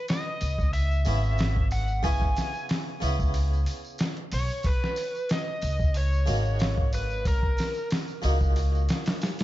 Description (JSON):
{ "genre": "trip hop", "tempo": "92 BPM", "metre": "4/4", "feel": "swing 54% on 16ths", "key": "C# dorian", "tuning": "A4 = 440 Hz", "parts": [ { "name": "overdriven slide guitar", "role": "melody", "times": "0.0-7.9 s", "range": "A#4 to G#5", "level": "-32 LUFS", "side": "equal", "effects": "tape echo" }, { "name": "dusty soul sampler-style drum kit", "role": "drums", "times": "0.1-9.4 s", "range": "hi-hat, kick drum, snare drum", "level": "-28 LUFS", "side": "equal", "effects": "none" }, { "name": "tambourine and triangle", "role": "percussion", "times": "0.1-9.4 s", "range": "none", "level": "-46 LUFS", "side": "right 3 dB", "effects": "none" }, { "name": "upright bass", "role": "bass", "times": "0.4-8.9 s", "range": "G#1 to C#2", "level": "-26 LUFS", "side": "equal", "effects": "tube saturation" }, { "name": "harpsichord", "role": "accompaniment", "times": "1.1-9.4 s", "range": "A#2 to F#4", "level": "-34 LUFS", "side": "right 1 dB", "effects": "tremolo, tape echo" } ], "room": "small room ambience", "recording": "dark, warm production, vinyl crackle, nothing above 7.7 kHz", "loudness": "-24 LUFS", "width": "side -15 dB against mid", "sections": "0.0-9.4 A section", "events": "none", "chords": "0.0 C#m7; 4.6 Bmaj7", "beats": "0.08 0.73 1.39 | 2.04 2.69 3.34 3.99 | 4.65 5.30 5.95 6.60 | 7.25 7.91 8.56 9.21" }